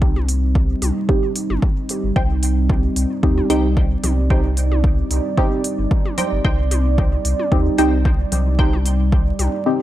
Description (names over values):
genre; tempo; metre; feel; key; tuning
dub techno; 112 BPM; 4/4; swing 54% on 16ths; C minor; A4 = 440 Hz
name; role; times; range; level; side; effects
deep dark ambient pad; sustained chords; 0.0-9.8 s; G3 to D5; -24 LUFS; right 1 dB; chorus, built-in reverb, sidechain pumping
warm sub bass; bass; 0.0-9.5 s; G1 to Eb2; -19 LUFS; equal; sidechain pumping
electronic kick drum; drums; 0.0-9.2 s; none; -18 LUFS; equal; none
electronic toms and congas; percussion; 0.2-9.5 s; none; -32 LUFS; left 3 dB; overdrive, sidechain pumping on toms, sidechain pumping on perc, dub echo
electronic hi-hat; drums; 0.3-9.5 s; none; -25 LUFS; right 1 dB; none
deep mellow chord stab; stabs; 1.1-9.8 s; C4 to G4; -22 LUFS; right 1 dB; chorus, phaser, sidechain pumping, dub echo
filtered dub chord stab; riff; 2.2-8.7 s; Eb4 to G5; -29 LUFS; left 1 dB; phaser, sidechain pumping, dub echo
room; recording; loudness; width
little or no reverb; dry, gritty hardware recording, transformer saturation, vinyl crackle; -16 LUFS; side -14 dB against mid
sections
0.0-9.8 A section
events
kick drops out 9.7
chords
0.0 Cm